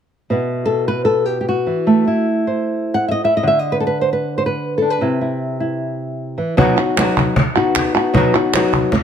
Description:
flamenco; free time; A4 = 441 Hz
flamenco guitar; melody; 0.3-9.0 s; B2 to F#5; -16 LUFS; equal; plate reverb
cajon; percussion; 6.6-9.0 s; -19 LUFS; left 1 dB
palmas hand claps; percussion; 6.8-8.9 s; -21 LUFS; right 6 dB
moderate stone room reverb, RT60 1.1 s; -15 LUFS; side -8 dB against mid
0.3-6.6 A section; 6.6-9.0 B section
0.3 Bsus4; 1.9 Am; 3.4 N.C.; 5.0 C; 6.6 B
free time

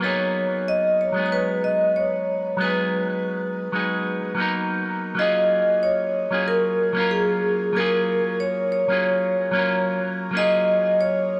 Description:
chillout; 93 BPM; 4/4; straight; F# major; A4 = 440 Hz
vibraphone with medium mallets; melody; 0.0-11.4 s; G#4 to D#5; -24 LUFS; equal; shimmer reverb, analog delay
electric guitar with an envelope filter; accompaniment; 0.0-11.4 s; F#3 to A#4; -27 LUFS; equal; shimmer reverb, analog delay
wet spring reverb, RT60 1.2 s, small room ambience; echo-heavy mix; -22 LUFS; mono
0.0-5.2 A section; 5.2-11.4 B section
0.0 G#m7; 5.2 F#maj7
| 0.03 0.67 1.32 1.96 | 2.61 3.25 3.90 4.54 | 5.19 5.83 6.48 7.12 | 7.77 8.41 9.06 9.71 | 10.35 10.99

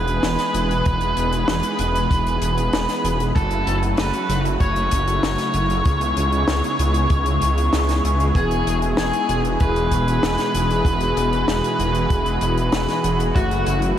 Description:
synthwave; 96 BPM; 4/4; straight; E major; A4 = 440 Hz
octave-fuzz lead guitar; melody; 0.0-13.8 s; F#4 to C#5; -23 LUFS; equal; distortion, analog delay
soft supersaw; sustained chords; 0.0-14.0 s; B2 to B4; -25 LUFS; equal; sidechain pumping
wide detuned saw bass; bass; 0.0-13.9 s; E1 to C#2; -22 LUFS; equal; chorus, tube saturation
compact cocktail drum kit; drums; 0.1-13.9 s; hi-hat, snare drum; -28 LUFS; left 2 dB; studio reverb
kick drum; drums; 0.9-13.5 s; -21 LUFS; equal; studio reverb
analog synth brass; stabs; 8.4-14.0 s; E3 to G#4; -24 LUFS; left 1 dB; chorus, analog delay
moderate huge ambient reverb, RT60 8.7 s; dreamy mix soaked in reverb; -17 LUFS; side -10 dB against mid
0.0-14.0 A section
0.0 E; 3.4 F#m7; 5.9 C#m7; 8.4 E; 13.4 F#m7
0.23 | 0.86 1.48 2.11 2.73 | 3.36 3.98 4.61 5.23 | 5.86 6.48 7.11 7.73 | 8.36 8.98 9.61 10.23 | 10.86 11.48 12.11 12.73 | 13.36 13.98

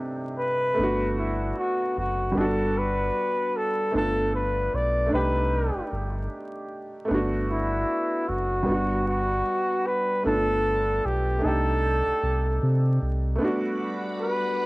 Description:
hip hop; 76 BPM; 4/4; swing 58% on 16ths; G major; A4 = 440 Hz
felt-muted upright piano; accompaniment; 0.0-14.7 s; C3 to G4; -28 LUFS; right 1 dB; cassette tape
trumpet with bucket mute; melody; 0.4-14.7 s; E4 to D5; -25 LUFS; equal; cassette tape, plate reverb, analog delay
sub bass with octave; bass; 0.8-13.4 s; F#1 to C3; -27 LUFS; equal; transformer saturation
string machine, violins; sustained chords; 13.4-14.7 s; G3 to D6; -35 LUFS; left 1 dB; ensemble chorus, cassette tape
light reverb; home recording on cassette, vinyl crackle; -23 LUFS; side -21 dB against mid
0.8-14.7 A section
break 13.4-14.7
0.0 Cm6; 0.8 Gmaj7; 2.4 Gmaj9; 3.9 G7; 5.1 Cm6; 7.1 Gmaj7; 10.2 G7; 11.4 Cm6; 13.4 Gmaj7
| 0.77 1.56 2.35 3.14 | 3.93 4.72 5.51 6.30 | 7.09 7.88 8.67 9.46 | 10.25 11.04 11.83 12.62 | 13.40 14.20

